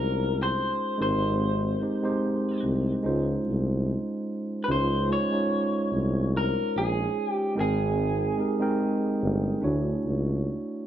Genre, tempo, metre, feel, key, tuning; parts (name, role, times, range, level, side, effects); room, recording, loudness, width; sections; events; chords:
R&B, neo-soul; 73 BPM; 4/4; swing 54% on 16ths; Db lydian; A4 = 440 Hz
electric guitar through a small old amp; melody; 0.0-10.0 s; Ab4 to Db5; -29 LUFS; equal; harmonic tremolo
mellow tine electric piano; accompaniment; 0.0-10.9 s; Ab3 to G5; -28 LUFS; right 1 dB
breathy tuba; bass; 0.0-10.5 s; G1 to D2; -27 LUFS; left 1 dB
light reverb, studio ambience; dark, warm production; -24 LUFS; side -11 dB against mid
0.0-4.7 A section; 4.7-10.9 A section
0.0 Dbmaj9; 1.0 Abmaj9; 3.0 Dbmaj9; 7.6 Abmaj9; 9.6 Dmaj9